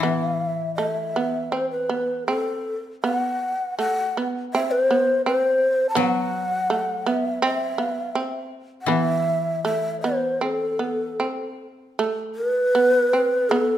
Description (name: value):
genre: japanese traditional, Japanese chamber music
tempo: 74-84 BPM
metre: 4/4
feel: rubato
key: A kumoi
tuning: A4 = 440 Hz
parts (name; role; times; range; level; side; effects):
- breathy mellow long shakuhachi; melody; 0.0-13.8 s; A4 to A5; -22 LUFS; equal; none
- shamisen; second line; 0.0-13.8 s; A3 to C4; -25 LUFS; right 3 dB; none
- koto; accompaniment; 0.0-11.2 s; A2 to F#3; -28 LUFS; left 7 dB; none
room: moderate recital hall reverb, RT60 1.5 s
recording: minimal, uncompressed stereo recording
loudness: -20 LUFS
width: side -11 dB against mid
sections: 0.0-12.0 A section; 12.0-13.8 B section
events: none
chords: none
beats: | 0.01 0.77 1.52 2.29 | 3.04 3.80 4.54 5.26 | 5.98 6.70 7.43 8.15 | 8.89 9.64 10.40 11.19 | 11.98 12.74 13.50